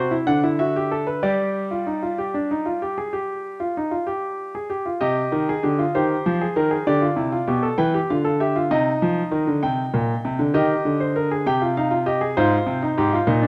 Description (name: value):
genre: classical, baroque-style 3-part fugue for grand piano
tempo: 65 BPM (dotted quarters)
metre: 12/8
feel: straight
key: C minor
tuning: A4 = 438 Hz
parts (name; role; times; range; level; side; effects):
- warm grand piano; solo; 0.0-13.5 s; Ab2 to G5; -22 LUFS; equal; none
room: light reverb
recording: close, detailed microphones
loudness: -22 LUFS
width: mono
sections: 0.0-5.0 A section; 5.0-13.5 B section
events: none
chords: 0.0 D7; 1.2 G5; 5.0 Cm; 6.9 Bdim; 8.7 Cm; 12.4 Ab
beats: 0.29 | 1.24 2.19 3.13 4.07 | 5.02 5.95 6.87 7.79 | 8.71 9.62 10.54 11.45 | 12.36 13.27